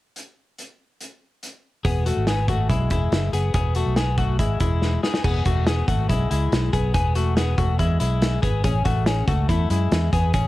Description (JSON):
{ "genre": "jangly indie pop", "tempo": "141 BPM", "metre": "4/4", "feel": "straight", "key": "E major", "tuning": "A4 = 442 Hz", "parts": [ { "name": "loose indie drum kit", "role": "drums", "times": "0.2-10.4 s", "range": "crash cymbal, hi-hat, kick drum, snare drum", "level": "-24 LUFS", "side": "right 1 dB", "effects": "none" }, { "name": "twelve-string electric guitar", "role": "arpeggios", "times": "1.8-10.5 s", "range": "G#3 to G#4", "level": "-25 LUFS", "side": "left 5 dB", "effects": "cassette tape, tape echo" }, { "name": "fingered electric bass", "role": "bass", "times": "1.8-10.5 s", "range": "E1 to F#2", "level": "-22 LUFS", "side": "right 1 dB", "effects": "none" } ], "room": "light reverb", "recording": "home recording on cassette", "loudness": "-19 LUFS", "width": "side -16 dB against mid", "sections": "0.2-1.9 A section; 1.9-5.2 B section; 5.2-10.5 C section", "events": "drum fill 4.8-5.2", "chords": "0.2 N.C.; 1.9 E; 8.6 A6" }